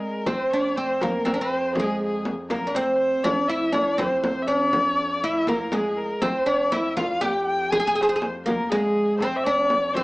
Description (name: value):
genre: Persian modal ensemble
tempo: 81 BPM (dotted quarters)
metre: 6/8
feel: straight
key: F avaz esfahan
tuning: A4 = 441 Hz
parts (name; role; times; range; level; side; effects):
- oud; melody; 0.0-10.0 s; Ab3 to Ab4; -23 LUFS; right 1 dB; none
- rich kamancheh; second line; 0.0-10.0 s; Ab4 to Ab5; -26 LUFS; left 2 dB; slapback echo
- warm double bass; drone; 0.3-10.0 s; F2; -40 LUFS; equal; none
- frame drum; percussion; 0.3-10.0 s; none; -29 LUFS; equal; none
room: moderate studio reverb, RT60 0.6 s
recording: small speaker sound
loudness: -21 LUFS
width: side -20 dB against mid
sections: 0.3-10.0 A section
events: none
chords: none